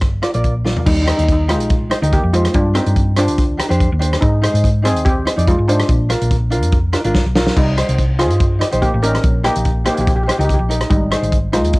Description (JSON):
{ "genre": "calypso", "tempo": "144 BPM", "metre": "4/4", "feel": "swing 54% on 16ths", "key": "Eb major", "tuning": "A4 = 440 Hz", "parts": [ { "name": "steel pan", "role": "melody", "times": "0.0-11.8 s", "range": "G3 to Bb4", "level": "-20 LUFS", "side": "equal", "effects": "cassette tape" }, { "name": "hollow-body short-scale fingered electric bass", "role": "bass", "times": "0.0-11.8 s", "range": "G1 to Ab2", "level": "-17 LUFS", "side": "equal", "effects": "none" }, { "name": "warm soul drum kit", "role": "drums", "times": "0.0-11.8 s", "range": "crash cymbal, hi-hat, kick drum, rim click, snare drum, toms", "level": "-18 LUFS", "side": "equal", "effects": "cassette tape" }, { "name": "tenor ukulele", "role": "accompaniment", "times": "0.2-11.8 s", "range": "D4 to D5", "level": "-22 LUFS", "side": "equal", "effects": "cassette tape, plate reverb" } ], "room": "light reverb", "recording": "home recording on cassette", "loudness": "-13 LUFS", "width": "side -23 dB against mid", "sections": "0.9-11.8 A section", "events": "drum fill 0.7, 7.1-7.6", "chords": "0.0 Bb; 0.9 Eb; 2.5 Gm7; 4.2 Ab; 5.9 Bb; 7.6 Cm7; 9.2 Eb/Bb; 10.9 Abmaj7" }